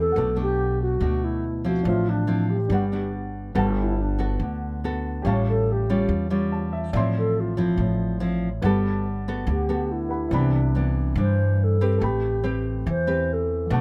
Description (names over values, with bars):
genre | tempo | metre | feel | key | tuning
bossa nova | 142 BPM | 4/4 | straight | G major | A4 = 442 Hz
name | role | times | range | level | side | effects
mellow hollow wooden-headed alto flute | melody | 0.0-13.8 s | D4 to C5 | -29 LUFS | equal | plate reverb
nylon-string guitar | accompaniment | 0.0-13.8 s | G2 to B4 | -28 LUFS | equal | none
warm baby grand piano | accompaniment | 0.0-13.8 s | C4 to C6 | -37 LUFS | equal | none
upright bass | bass | 0.0-13.8 s | G1 to G2 | -28 LUFS | equal | none
room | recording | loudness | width
light reverb | none | -24 LUFS | mono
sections
0.0-3.5 A section; 3.5-13.8 B section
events
alto flute solo 3.5-13.8; grand piano fill 6.3-6.9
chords
0.2 Gmaj9/B; 1.9 Dm9/A; 2.7 Gmaj7; 3.5 Gmaj9; 5.2 A7b13; 6.9 Dm9/A; 8.6 Gmaj9; 10.3 Cmaj9; 12.0 Am9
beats
| 0.16 0.59 1.01 1.43 | 1.86 2.28 2.70 3.12 | 3.55 3.97 4.39 4.82 | 5.24 5.66 6.09 6.51 | 6.93 7.36 7.78 8.20 | 8.63 9.05 9.47 9.90 | 10.32 10.74 11.17 11.59 | 12.01 12.44 12.86 13.28 | 13.71